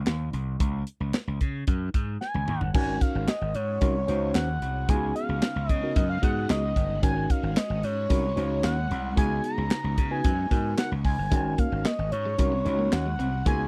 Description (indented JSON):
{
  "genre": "early-eighties boogie funk",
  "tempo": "112 BPM",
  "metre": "4/4",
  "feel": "straight",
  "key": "unclear",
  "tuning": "A4 = 440 Hz",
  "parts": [
    { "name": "gritty slap bass", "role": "bass", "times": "0.0-13.7 s", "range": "G1 to Db3", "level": "-31 LUFS", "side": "equal", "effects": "overdrive" },
    { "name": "tight funk drum kit", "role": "drums", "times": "0.1-13.6 s", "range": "crash cymbal, handclaps, hi-hat, kick drum, snare drum, toms", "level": "-28 LUFS", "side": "equal", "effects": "none" },
    { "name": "expressive synth lead", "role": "melody", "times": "2.2-13.7 s", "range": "Db5 to Bb5", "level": "-33 LUFS", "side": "equal", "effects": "chorus" },
    { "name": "mellow tine electric piano", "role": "accompaniment", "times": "2.7-13.7 s", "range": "Cb4 to Db5", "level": "-33 LUFS", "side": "equal", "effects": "overdrive" },
    { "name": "phased string machine", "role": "sustained chords", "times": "2.7-13.7 s", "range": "Db3 to Gb4", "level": "-42 LUFS", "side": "equal", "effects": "ensemble chorus, phaser" },
    { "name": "clean electric guitar", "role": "riff", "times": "11.3-13.5 s", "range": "Ab3 to C4", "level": "-36 LUFS", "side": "equal", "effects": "analog chorus" }
  ],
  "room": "little or no reverb",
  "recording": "dry, close 1970s-style studio recording",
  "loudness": "-26 LUFS",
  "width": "mono",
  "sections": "0.0-2.7 A section; 2.7-13.7 B section",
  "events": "drum fill 2.2-2.7",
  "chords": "0.0 N.C.; 0.6 Db5; 2.7 Ab9sus4; 4.9 Db9sus4; 7.0 Ab9sus4; 9.2 Db9sus4; 11.3 Ab9sus4",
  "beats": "0.07 | 0.60 1.14 1.67 2.21 | 2.75 3.28 3.82 4.35 | 4.89 5.42 5.96 6.50 | 7.03 7.57 8.10 8.64 | 9.17 9.71 10.25 10.78 | 11.32 11.85 12.39 12.92 | 13.46"
}